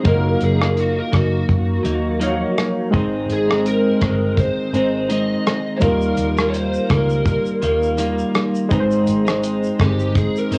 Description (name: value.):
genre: indie pop, bedroom pop.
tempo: 83 BPM.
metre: 4/4.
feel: swing 55% on 16ths.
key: Ab major.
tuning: A4 = 440 Hz.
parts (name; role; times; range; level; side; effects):
overdriven slide guitar; melody; 0.0-10.6 s; Gb4 to Eb5; -26 LUFS; equal; ensemble chorus, cassette tape, tape echo, plate reverb.
clean electric guitar; accompaniment; 0.0-10.6 s; Ab2 to F4; -24 LUFS; equal; lush chorus, vibrato effect, cassette tape.
warm analog keys; accompaniment; 0.0-10.6 s; F3 to F5; -25 LUFS; equal; chorus, cassette tape.
vintage muted fingered electric bass; bass; 0.0-10.6 s; Gb1 to Gb2; -25 LUFS; equal; none.
damped 70s drum kit; drums; 0.0-10.6 s; hi-hat, kick drum, rim click, shaker; -23 LUFS; equal; vintage 12-bit sampler grit, cassette tape.
room: moderate small room reverb, RT60 0.5 s.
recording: home recording on cassette, small room ambience.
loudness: -19 LUFS.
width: mono.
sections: 0.0-10.6 A section.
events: none.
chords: 0.1 Ebmadd9/Gb; 2.9 Ab; 5.8 Ebadd9; 8.7 Ab.